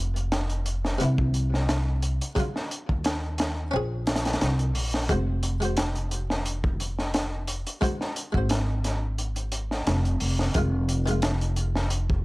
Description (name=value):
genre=trip hop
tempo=88 BPM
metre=4/4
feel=swing 53% on 16ths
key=unclear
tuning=A4 = 441 Hz
part: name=buff-stop harpsichord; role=accompaniment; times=0.0-12.2 s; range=C3 to C5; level=-31 LUFS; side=left 1 dB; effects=tremolo, tape echo
part: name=upright bass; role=bass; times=0.0-12.2 s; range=F1 to Eb2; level=-26 LUFS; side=equal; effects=tube saturation
part: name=crunchy breakbeat drum kit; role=drums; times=0.2-12.2 s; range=hi-hat, kick drum, snare drum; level=-28 LUFS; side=equal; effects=none
room=small room reverb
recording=dry, gritty hardware recording, vinyl crackle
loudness=-24 LUFS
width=side -22 dB against mid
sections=0.0-5.1 A section; 5.1-12.2 B section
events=none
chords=0.0 Fm7; 1.0 Cmaj7; 2.4 Ebm9; 3.7 Bbm9; 5.1 Ab7/F; 10.5 Fm7